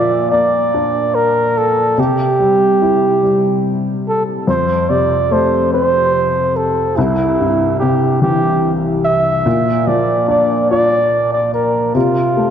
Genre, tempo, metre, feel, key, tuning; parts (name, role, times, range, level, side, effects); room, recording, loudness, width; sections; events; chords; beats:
pop; 48 BPM (dotted quarters); 6/8; straight; F major; A4 = 440 Hz
mellow flugelhorn; melody; 0.0-12.5 s; E4 to E5; -14 LUFS; right 2 dB; tape echo
warm upright piano; accompaniment; 0.0-12.5 s; C2 to F4; -16 LUFS; left 3 dB
wet scoring stage reverb, RT60 1.5 s; dark, warm production; -12 LUFS; side -8 dB against mid
0.0-12.5 A section
0.0 Bb; 2.0 C; 4.5 F; 7.0 C; 9.5 Bb; 11.9 F/C
0.72 | 1.97 3.22 | 4.47 5.72 | 6.96 8.21 | 9.46 10.70 | 11.95